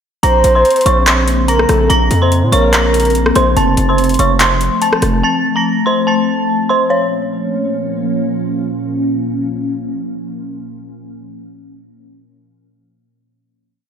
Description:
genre	hip hop, trap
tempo	144 BPM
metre	4/4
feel	half-time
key	Bb harmonic minor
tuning	A4 = 440 Hz
part	dark detuned synth bell	melody	0.2-8.1 s	C5 to Bb6	-16 LUFS	equal	chorus, phaser
part	breathy flute-like synth lead	second line	0.2-3.1 s	A4 to C5	-16 LUFS	right 1 dB	chorus, ping-pong delay
part	glassy FM pad	sustained chords	0.8-10.4 s	Bb2 to Db4	-18 LUFS	left 1 dB	ensemble chorus, built-in reverb, phaser
part	distorted 808-style bass	bass	0.2-5.2 s	F1 to Bb2	-14 LUFS	equal	distortion
part	trap drum kit	drums	0.2-5.1 s	handclaps, hi-hat, rim click	-17 LUFS	left 1 dB	none
room	wet lush hall reverb, RT60 1.6 s, digital ambience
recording	dreamy mix soaked in reverb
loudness	-11 LUFS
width	side -8 dB against mid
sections	0.2-6.9 hook; 6.9-10.2 final chord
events	none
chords	0.2 Bbmadd9; 3.6 F; 6.9 Bbm

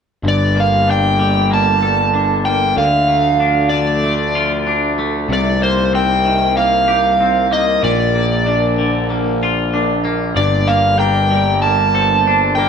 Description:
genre	rock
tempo	95 BPM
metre	4/4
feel	straight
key	G minor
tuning	A4 = 440 Hz
part	airy breathy pad	sustained chords	1.1-12.7 s	F3 to A5	-25 LUFS	equal	chorus
part	twangy electric guitar	arpeggios	0.2-12.7 s	G2 to A4	-19 LUFS	equal	none
part	fuzz picked electric bass	bass	0.2-12.7 s	G1 to D2	-19 LUFS	equal	overdrive
part	biting overdriven guitar	melody	0.3-12.7 s	C5 to A5	-15 LUFS	right 1 dB	none
part	twelve-string electric guitar	arpeggios	10.4-12.7 s	Bb4 to D5	-26 LUFS	right 1 dB	phaser
room	wet stone room reverb, RT60 1.2 s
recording	band playing live in one room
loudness	-13 LUFS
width	side -6 dB against mid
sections	0.2-12.7 A section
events	none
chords	0.2 Gmadd9; 2.8 Dm; 5.3 Cm7; 7.8 Bb; 10.4 Gmadd9

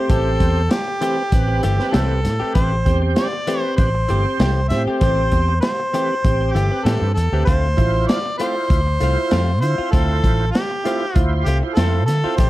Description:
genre	straight-eighth soul blues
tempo	98 BPM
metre	4/4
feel	straight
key	unclear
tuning	A4 = 443 Hz
part	warm harmonica	melody	0.0-12.5 s	G4 to E5	-23 LUFS	equal	overdrive
part	tonewheel organ	accompaniment	0.0-12.4 s	C4 to C5	-25 LUFS	right 3 dB	slow rotary speaker, overdrive, chorus vibrato
part	direct-recorded clean electric guitar	stabs	0.0-12.5 s	E3 to G4	-28 LUFS	left 4 dB	none
part	vintage muted fingered electric bass	bass	0.1-12.5 s	G1 to D3	-19 LUFS	equal	none
part	crunchy breakbeat drum kit	drums	0.1-12.5 s	hi-hat, kick drum, snare drum	-20 LUFS	equal	none
room	light reverb, small room reverb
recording	none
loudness	-16 LUFS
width	side -16 dB against mid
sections	0.0-12.5 A section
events	none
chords	0.0 Am7; 7.5 Dm7

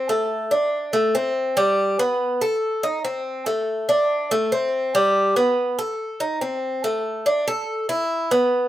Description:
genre	latin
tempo	142 BPM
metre	4/4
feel	straight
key	unclear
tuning	A4 = 441 Hz
part	Cuban tres	solo	0.0-8.7 s	G3 to A4	-19 LUFS	equal	slapback echo
room	little or no reverb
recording	recorded outdoors, with no room sound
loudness	-19 LUFS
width	side -13 dB against mid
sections	0.0-6.8 A section; 6.8-8.7 B section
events	none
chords	none

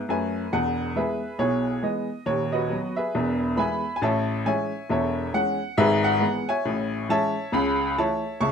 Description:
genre	jazz, stride piano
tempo	137 BPM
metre	4/4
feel	swing 61% on 8ths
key	E major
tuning	A4 = 440 Hz
part	clear upright piano	solo	0.0-8.5 s	D#1 to C#6	-22 LUFS	equal	none
room	moderate club ambience, RT60 0.5 s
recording	minimal, uncompressed stereo recording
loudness	-22 LUFS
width	side -7 dB against mid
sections	0.5-8.5 A section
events	none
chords	0.0 E; 2.3 B/D#; 3.1 E; 4.0 Amaj7; 5.8 E/G#; 6.6 Amaj7; 7.5 A/C#

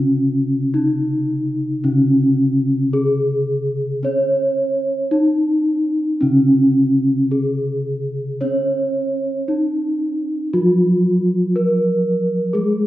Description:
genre	gamelan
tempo	55-62 BPM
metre	4/4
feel	straight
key	Db slendro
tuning	A4 = 435 Hz
part	gamelan-type bronze metallophone	melody	0.0-12.9 s	Db4 to Db5	-17 LUFS	equal	slapback echo
part	gamelan-type bronze metallophone	accompaniment	0.0-12.9 s	Db3 to Db4	-21 LUFS	equal	none
room	wet recital hall reverb, RT60 1.6 s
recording	heard from further back in the room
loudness	-16 LUFS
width	side -15 dB against mid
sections	0.0-12.9 A section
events	none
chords	none

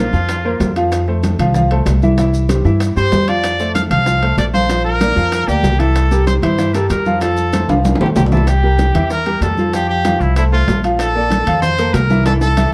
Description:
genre	latin, salsa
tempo	190 BPM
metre	4/4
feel	straight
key	F major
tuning	A4 = 439 Hz
part	bright trumpet	melody	0.0-0.7, 3.0-12.7 s	E4 to F5	-21 LUFS	equal	none
part	clear baby grand piano	accompaniment	0.0-12.7 s	E3 to F5	-21 LUFS	equal	none
part	upright bass	bass	0.0-12.7 s	Bb1 to G2	-19 LUFS	equal	none
part	congas	percussion	0.1-12.7 s	none	-24 LUFS	equal	none
part	maracas	percussion	0.1-12.7 s	none	-39 LUFS	equal	none
part	bongos	percussion	0.3-12.5 s	none	-27 LUFS	equal	none
part	timbales	percussion	0.3-12.7 s	none	-28 LUFS	equal	none
room	moderate studio reverb, RT60 0.8 s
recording	dark, warm production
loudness	-15 LUFS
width	mono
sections	0.0-8.5 A section; 8.5-12.7 B section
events	drum fill 7.5-8.5, 12.3-12.7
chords	0.0 Bbsus2; 0.9 Fmaj7; 2.2 C; 3.4 F6; 4.7 Bb6; 6.0 C7; 7.2 F; 8.5 C6; 9.7 Fadd9; 11.0 Bbmaj7

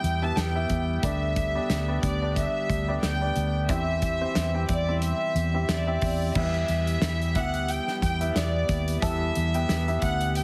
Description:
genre	piano-driven pop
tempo	90 BPM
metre	4/4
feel	swing 56% on 16ths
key	E minor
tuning	A4 = 438 Hz
part	warm studio violin section	melody	0.0-10.4 s	D5 to A5	-32 LUFS	equal	plate reverb
part	warm grand piano	accompaniment	0.0-10.4 s	D3 to G5	-34 LUFS	equal	plate reverb
part	chorused pulse-width pad	sustained chords	0.0-10.4 s	D3 to G4	-39 LUFS	equal	plate reverb
part	vintage muted fingered electric bass	bass	0.0-10.4 s	D2 to E2	-30 LUFS	equal	none
part	natural country drum kit	drums	0.0-10.4 s	crash cymbal, hi-hat, kick drum, snare drum	-33 LUFS	equal	none
room	light reverb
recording	heavily compressed radio sound, multiband compression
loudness	-26 LUFS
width	mono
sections	0.0-6.4 A section; 6.4-10.4 B section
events	none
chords	0.0 Em; 1.0 G/D; 3.7 C/E; 6.4 Em

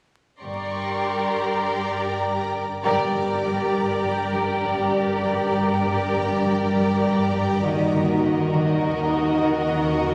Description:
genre	cinematic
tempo	100 BPM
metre	4/4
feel	straight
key	G harmonic minor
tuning	A4 = 440 Hz
part	warm symphonic violin section	melody	0.4-10.1 s	D5 to Eb5	-32 LUFS	equal	none
part	warm studio violin section	second line	0.4-10.1 s	Gb4 to Bb4	-27 LUFS	equal	none
part	shimmering ambient pad	sustained chords	1.4-10.1 s	Gb4 to Bb5	-32 LUFS	equal	chorus, built-in reverb, phaser
part	clear symphonic double bass section	bass	0.4-10.1 s	G1 to Eb2	-36 LUFS	equal	none
part	warm symphonic cello section	bass	0.4-10.1 s	G2 to Eb3	-35 LUFS	equal	none
part	metallic inharmonic drone	drone	1.1-10.1 s	G1 to Eb2	-36 LUFS	equal	chorus, built-in reverb, phaser
part	warm studio violin section	texture	0.4-2.5 s	Bb5 to C#6	-35 LUFS	equal	none
part	concert harp	riff	2.8-10.1 s	G2 to Eb4	-26 LUFS	equal	none
room	wet scoring stage reverb, RT60 1.6 s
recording	vinyl crackle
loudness	-22 LUFS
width	mono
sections	0.4-2.9 A section; 2.9-10.1 B section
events	band accent 2.9-3.5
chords	0.4 Gm; 7.6 Ebm

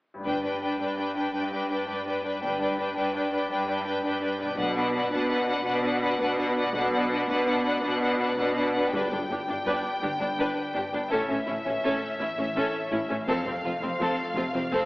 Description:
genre	cinematic, heroic adventure film score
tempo	111 BPM (dotted quarters)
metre	12/8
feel	straight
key	G major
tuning	A4 = 440 Hz
part	concert harp	arpeggios	0.1-14.9 s	F2 to D5	-36 LUFS	left 1 dB	none
part	rich symphonic violin section	second line	0.2-14.9 s	C4 to B4	-31 LUFS	left 1 dB	none
part	rich symphonic viola section	accompaniment	0.2-14.9 s	C4 to D4	-30 LUFS	equal	none
part	rich symphonic cello section	bass	0.2-14.8 s	F2 to B2	-31 LUFS	equal	none
part	warm symphonic violin section	melody	0.3-14.9 s	E5 to G5	-32 LUFS	left 1 dB	none
part	clear symphonic double bass section	bass	0.3-14.8 s	F1 to B1	-39 LUFS	equal	none
part	timpani	percussion	8.9-9.4 s	G2	-39 LUFS	equal	none
room	wet scoring stage reverb, RT60 1.5 s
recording	AM radio sound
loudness	-25 LUFS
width	side -21 dB against mid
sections	0.2-8.9 A section; 8.9-14.9 B section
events	build-up 8.9-14.9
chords	0.2 G; 4.6 Bm; 8.9 G; 11.1 A; 13.3 F

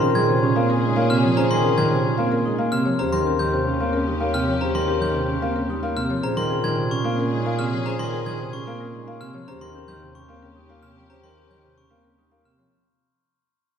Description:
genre	classical, minimalist pattern music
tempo	111 BPM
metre	3/4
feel	straight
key	Eb mixolydian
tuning	A4 = 440 Hz
part	buzzing marimba with medium mallets	melody	0.0-12.8 s	G4 to F5	-29 LUFS	left 4 dB	none
part	dark baby grand piano	accompaniment	0.0-12.8 s	C3 to Bb3	-26 LUFS	right 1 dB	none
part	rich studio string section	sustained chords	0.0-12.6 s	Db4 to Ab4	-31 LUFS	left 2 dB	none
part	glockenspiel with brass mallets	arpeggios	0.0-12.6 s	Bb5 to Ab6	-28 LUFS	left 4 dB	none
part	vibraphone with medium hard mallets	arpeggios	0.0-12.6 s	C4 to Bb4	-26 LUFS	right 2 dB	none
part	mellow bass clarinet	bass	0.0-12.6 s	Eb2 to Bb2	-26 LUFS	right 2 dB	none
room	wet recital hall reverb, RT60 1.6 s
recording	heard from further back in the room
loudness	-19 LUFS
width	side -8 dB against mid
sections	0.0-12.7 A section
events	fade-out 0.0-12.7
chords	0.0 Bbm9; 3.0 Eb9; 6.2 Bbm9; 9.5 Eb9

